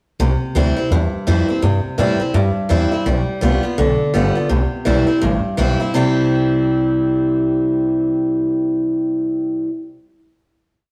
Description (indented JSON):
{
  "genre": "rockabilly",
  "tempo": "167 BPM",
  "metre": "4/4",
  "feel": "swing 61% on 8ths",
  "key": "C major",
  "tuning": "A4 = 436 Hz",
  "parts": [
    { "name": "picked acoustic archtop guitar", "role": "accompaniment", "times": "0.2-9.7 s", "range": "G2 to F4", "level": "-19 LUFS", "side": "equal", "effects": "none" },
    { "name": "upright bass", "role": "bass", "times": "0.2-9.6 s", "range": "G1 to A2", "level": "-22 LUFS", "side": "equal", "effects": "none" }
  ],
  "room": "wet stone room reverb, RT60 1.2 s",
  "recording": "rough rehearsal-room recording",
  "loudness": "-18 LUFS",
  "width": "mono",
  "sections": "0.2-5.9 A section; 5.9-8.8 final chord",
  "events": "none",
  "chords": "0.2 C; 3.1 G7; 4.5 C"
}